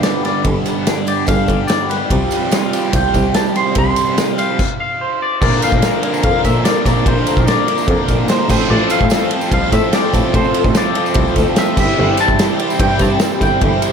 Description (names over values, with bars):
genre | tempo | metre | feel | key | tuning
indie rock | 146 BPM | 4/4 | straight | unclear | A4 = 440 Hz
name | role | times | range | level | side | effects
twangy electric guitar | melody | 0.0-13.9 s | B4 to C6 | -20 LUFS | left 2 dB | lush chorus, tape echo
overdriven electric guitar | riff | 0.0-13.9 s | G2 to Bb4 | -21 LUFS | left 10 dB | phaser
overdriven electric guitar | riff | 0.0-13.9 s | G2 to Bb4 | -20 LUFS | right 10 dB | wide subtle chorus
loose indie drum kit | drums | 0.0-13.9 s | crash cymbal, kick drum, ride cymbal, snare drum | -17 LUFS | equal | none
tambourine | percussion | 0.0-13.9 s | none | -35 LUFS | right 11 dB | none
bright double bass | bass | 0.5-13.7 s | G1 to Bb2 | -19 LUFS | equal | none
overdriven combo organ | sustained chords | 5.4-13.9 s | D3 to C4 | -28 LUFS | left 2 dB | none
room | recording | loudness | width
light reverb | none | -13 LUFS | side -6 dB against mid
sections
0.0-5.4 A section; 5.4-13.9 B section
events
clean electric guitar solo 0.0-5.4; stop 4.6-5.4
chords
0.0 G; 2.1 Csus4; 5.4 Bbadd9; 8.5 F/A; 11.8 C/G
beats
0.03 | 0.45 0.86 1.28 1.69 | 2.11 2.52 2.94 3.35 | 3.77 4.18 4.59 5.00 | 5.41 5.83 6.24 6.65 | 7.06 7.47 7.88 8.29 | 8.70 9.11 9.52 9.93 | 10.34 10.75 11.16 11.57 | 11.98 12.39 12.80 13.21 | 13.62